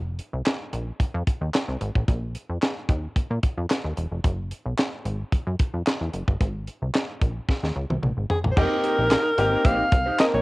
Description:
early-eighties boogie funk; 111 BPM; 4/4; straight; F minor; A4 = 440 Hz
plucky analog bass; bass; 0.0-10.4 s; E1 to Bb2; -27 LUFS; equal
tight funk drum kit; drums; 0.2-10.3 s; crash cymbal, handclaps, hi-hat, kick drum, snare drum, toms; -23 LUFS; equal; cassette tape
breathy alto saxophone; melody; 8.3-10.4 s; Ab4 to F5; -23 LUFS; equal; cassette tape
clear grand piano; accompaniment; 8.6-10.4 s; Bb3 to Bb4; -25 LUFS; left 1 dB; cassette tape
electric guitar at the edge of break-up; riff; 8.6-10.4 s; Eb4 to C5; -30 LUFS; right 4 dB; analog chorus, cassette tape
studio reverb; home recording on cassette; -22 LUFS; side -21 dB against mid
0.0-8.6 A section; 8.6-10.4 B section
drum fill 7.5-8.6
0.0 Fsus4; 2.1 Bbsus4; 4.2 Gbsus2; 6.4 Absus2; 8.6 F9sus4

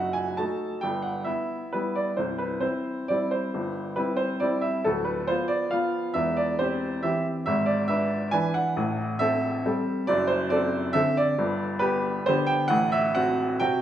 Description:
classical, piano waltz; 136 BPM; 3/4; uneven beats, rubato; E minor; A4 = 440 Hz
bright upright piano; solo; 0.0-13.8 s; C1 to A5; -23 LUFS; right 1 dB
wet recital hall reverb, RT60 1.7 s; -23 LUFS; side -11 dB against mid
0.0-13.8 A section
0.0 D#dim/F#; 0.8 Em/G; 2.2 C; 4.8 Bdim/D; 6.2 C/E; 7.5 E7/G#; 8.8 Am7; 10.1 D7/F#; 11.4 G; 12.7 F#dim/A

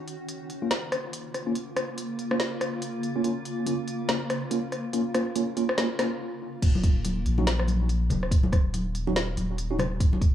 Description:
deep dubstep; 142 BPM; 4/4; swing 59% on 16ths, half-time; A4 = 440 Hz
granular cloud pad; sustained chords; 0.0-6.6 s; Db3 to F4; -34 LUFS; left 1 dB; built-in reverb
deep house drum kit; drums; 0.1-10.3 s; crash cymbal, hi-hat, rim click, snare drum; -30 LUFS; left 1 dB
mellow tine electric piano; stabs; 0.6-9.8 s; Bb3 to Gb4; -30 LUFS; right 2 dB; medium stereo tremolo, dub echo
soft dub sub bass; bass; 6.6-10.3 s; Eb1 to Bb1; -28 LUFS; equal
electronic kick drum; drums; 6.6-10.3 s; -21 LUFS; equal
congas; percussion; 6.8-10.2 s; -31 LUFS; left 2 dB; dub echo
moderate spring reverb, RT60 1.8 s; small room ambience; -25 LUFS; side -11 dB against mid
0.0-6.6 A section; 6.6-10.3 B section
build-up 0.0-6.6; break 6.2-6.6; drop 6.6-10.3
0.0 Bbm; 6.6 Eb5

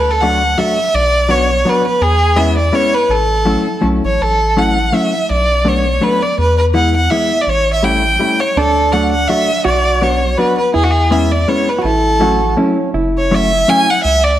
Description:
musette waltz; 165 BPM; 3/4; swing 54% on 8ths; A major; A4 = 437 Hz
clear violin; melody; 0.0-14.4 s; F#4 to G#5; -14 LUFS; equal
round analog bass; bass; 0.0-14.4 s; F#1 to E2; -17 LUFS; equal
hollow-body jazz guitar; accompaniment; 0.2-13.9 s; E3 to F#4; -18 LUFS; left 2 dB
hollow-body jazz guitar; second line; 8.6-14.4 s; C#4 to F#4; -19 LUFS; right 3 dB
moderate recital hall reverb, RT60 1.5 s; -11 LUFS; side -12 dB against mid
0.0-4.2 A section; 4.2-12.9 A section; 12.9-14.4 B section
0.0 D; 0.9 Bm; 2.0 E6; 3.1 A6; 5.3 Bm7; 6.4 E; 7.5 A7; 8.6 D; 9.7 Bm; 10.8 E6; 11.8 A6; 12.9 F#m7

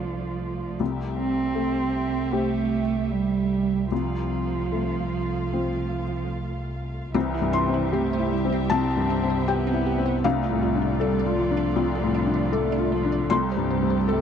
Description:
neoclassical piano and strings; 77 BPM; 4/4; uneven beats, rubato; C major; A4 = 440 Hz
muted cello; second line; 0.0-14.2 s; E3 to C4; -27 LUFS; right 7 dB; tape echo
felt-muted upright piano; accompaniment; 0.0-14.2 s; C2 to C6; -26 LUFS; left 7 dB
muted chamber string section; sustained chords; 0.0-14.2 s; G3 to F5; -34 LUFS; right 2 dB
muted double bass; bass; 0.0-14.2 s; C2; -30 LUFS; equal
glassy wavetable pluck; arpeggios; 7.1-14.2 s; C4 to D5; -31 LUFS; right 6 dB; chorus, tape echo
little or no reverb; dry, close 1970s-style studio recording; -22 LUFS; side -8 dB against mid
0.0-7.1 A section; 7.1-14.2 B section
0.0 Dm/C; 0.8 Am7/C; 3.9 F/C; 7.1 C; 10.2 Dm/C; 13.3 Am7/C

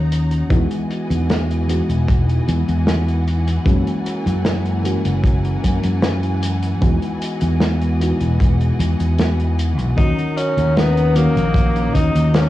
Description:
vaporwave; 76 BPM; 4/4; straight; E lydian; A4 = 440 Hz
mellow FM electric piano; accompaniment; 0.0-12.5 s; D#3 to A#4; -23 LUFS; left 1 dB; wide subtle chorus, cassette tape, tape echo
bright symphonic string section; sustained chords; 0.0-12.5 s; E3 to A#5; -31 LUFS; left 1 dB; cassette tape
fingered electric bass; bass; 0.0-12.5 s; E1 to F#2; -17 LUFS; equal
warm soul drum kit; drums; 0.1-12.5 s; hi-hat, snare drum; -23 LUFS; equal
kick drum; drums; 0.5-12.1 s; -17 LUFS; equal
clear tenor saxophone; melody; 10.0-12.5 s; A#3 to D#4; -20 LUFS; equal; vintage 12-bit sampler grit, tape echo
light reverb; home recording on cassette, studio reverb; -15 LUFS; side -15 dB against mid
0.0-12.5 A section
0.0 D#m7; 0.5 Emaj9; 3.7 F#9; 6.8 Emaj9; 10.0 D#m7

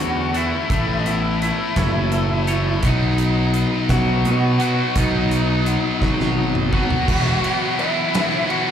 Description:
quiet-loud alternative rock; 56 BPM (dotted quarters); 6/8; straight; A4 = 442 Hz
lead guitar through a small cranked amp; melody; 0.0-8.7 s; D#4 to F#5; -24 LUFS; left 1 dB; overdrive, slapback echo
twangy electric guitar; arpeggios; 0.0-7.1 s; B2 to C#5; -29 LUFS; right 2 dB; slapback echo
high-gain distorted guitar; riff; 0.0-8.7 s; A2 to E4; -24 LUFS; left 9 dB; distortion, slapback echo
fuzz picked electric bass; bass; 0.0-7.3 s; E1 to B2; -21 LUFS; equal; overdrive
big rock drum kit; drums; 0.3-8.7 s; crash cymbal, hi-hat, kick drum, ride cymbal, snare drum, toms; -25 LUFS; right 1 dB
distorted electric guitar; riff; 2.8-8.7 s; B2 to E4; -25 LUFS; right 12 dB; overdrive, slapback echo
little or no reverb; live gig heard through the venue's PA, club reverb; -17 LUFS; side -9 dB against mid
0.0-7.1 A section; 7.1-8.7 B section
drum fill 6.0-7.1
0.0 Dadd9; 0.7 Aadd9; 2.8 B; 7.1 Esus2

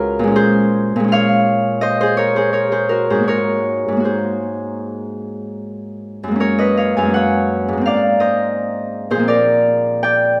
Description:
classical, solo harp piece; 75-86 BPM; 4/4; rubato; A4 = 440 Hz
Celtic harp; solo; 0.0-10.4 s; Db2 to Ab5; -17 LUFS; equal
wet recital hall reverb, RT60 1.7 s; recorded in a church or concert hall; -17 LUFS; mono
0.0-10.4 A section
0.3 Bbm9; 3.3 Ab9; 6.4 Gbadd9; 7.8 Abadd9; 9.3 Bbadd9

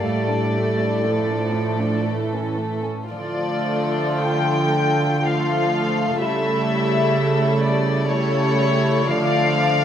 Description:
classical, slow romantic movement for string orchestra; 52-64 BPM; 3/4; rubato; D minor; A4 = 440 Hz
warm studio violin section; melody; 0.0-9.8 s; C#5 to G5; -24 LUFS; left 5 dB
warm studio violin section; second line; 0.0-9.8 s; A3 to D5; -25 LUFS; equal
dark studio viola section; accompaniment; 0.0-9.8 s; E3 to A3; -24 LUFS; right 2 dB
warm studio cello section; bass; 0.0-9.8 s; A2 to D3; -23 LUFS; right 2 dB
moderate scoring stage reverb, RT60 1.9 s; -18 LUFS; side -9 dB against mid
0.0-9.8 A section
0.0 Dm/A; 2.1 A; 3.1 Dm; 6.2 A7/C#; 9.1 Dm

